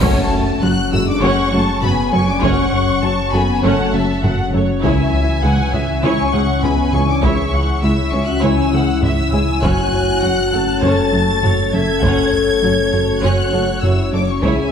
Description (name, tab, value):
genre	cinematic, hybrid orchestral and electronic film score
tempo	100 BPM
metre	4/4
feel	straight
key	F# minor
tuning	A4 = 439 Hz
part	clear symphonic violin section	melody	0.0-14.7 s	G#5 to A6	-23 LUFS	left 3 dB	none
part	warm symphonic viola section	accompaniment	0.0-14.7 s	F#3 to C#5	-24 LUFS	right 1 dB	none
part	glassy FM pad	sustained chords	0.0-14.7 s	E3 to C#5	-23 LUFS	left 5 dB	ensemble chorus, built-in reverb
part	mellow French horn section	sustained chords	0.0-14.7 s	E3 to A4	-22 LUFS	left 4 dB	none
part	thumb-piano-like synth pluck	arpeggios	0.0-14.6 s	C#3 to F#4	-27 LUFS	left 2 dB	chorus, tape echo
part	round analog bass	riff	0.0-14.6 s	C#2 to F#3	-23 LUFS	right 2 dB	none
part	dark symphonic cello section	bass	0.0-14.5 s	C#2 to F#2	-26 LUFS	right 2 dB	none
part	rich symphonic double bass section	bass	0.0-14.5 s	F#1 to C#2	-24 LUFS	right 3 dB	none
part	sub bass with octave	bass	0.0-14.7 s	F#1 to C#2	-24 LUFS	equal	none
part	taiko ensemble	drums	0.0-14.7 s	none	-24 LUFS	equal	none
part	cymbal swell and impact	sound effects	0.0-2.4 s	none	-24 LUFS	equal	none
part	dark concert grand piano	texture	0.0-14.7 s	G#3 to C#5	-30 LUFS	left 1 dB	tape echo
part	rich studio violin section	second line	1.2-14.7 s	C#5 to A5	-24 LUFS	left 1 dB	none
room	moderate scoring stage reverb, RT60 1.4 s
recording	none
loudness	-14 LUFS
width	side -7 dB against mid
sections	0.0-14.7 A section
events	impact 0.0-2.4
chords	0.0 F#m; 4.8 C#m; 9.6 F#m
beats	| 0.03 0.63 1.23 1.83 | 2.43 3.03 3.63 4.23 | 4.83 5.43 6.03 6.63 | 7.23 7.83 8.43 9.03 | 9.63 10.23 10.83 11.43 | 12.03 12.63 13.23 13.83 | 14.43